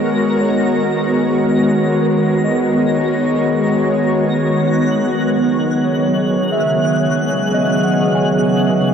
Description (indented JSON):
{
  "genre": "ambient",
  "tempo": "59 BPM",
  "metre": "4/4",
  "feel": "straight",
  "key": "G# minor",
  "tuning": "A4 = 441 Hz",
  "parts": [
    { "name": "shimmering ambient pad", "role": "sustained chords", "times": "0.0-8.9 s", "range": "C#3 to C#5", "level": "-15 LUFS", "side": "equal", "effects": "chorus, built-in reverb" },
    { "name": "muted felt-like synth keys", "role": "arpeggios", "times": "0.0-8.9 s", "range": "C#5 to G#5", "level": "-24 LUFS", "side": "left 1 dB", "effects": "chorus, ping-pong delay" },
    { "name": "bowed-like drone", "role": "drone", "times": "0.0-8.9 s", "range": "D#3 to G#3", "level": "-21 LUFS", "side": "equal", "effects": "built-in reverb, phaser" },
    { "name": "twinkling granular texture", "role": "texture", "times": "0.0-8.9 s", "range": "F#6 to A#6", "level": "-27 LUFS", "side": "left 1 dB", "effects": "built-in reverb" }
  ],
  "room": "wet huge ambient reverb, RT60 7.8 s",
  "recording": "worn, warbling old tape, cassette tape, warbly pitch drift",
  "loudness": "-13 LUFS",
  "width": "side -7 dB against mid",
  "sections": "0.0-8.9 A section",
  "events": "filter sweep on ambient pad 0.0-8.9",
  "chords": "0.0 G#m11; 4.5 F#9sus4",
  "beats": "| 0.42 1.44 2.45 3.47 | 4.49 5.50 6.52 7.54 | 8.56"
}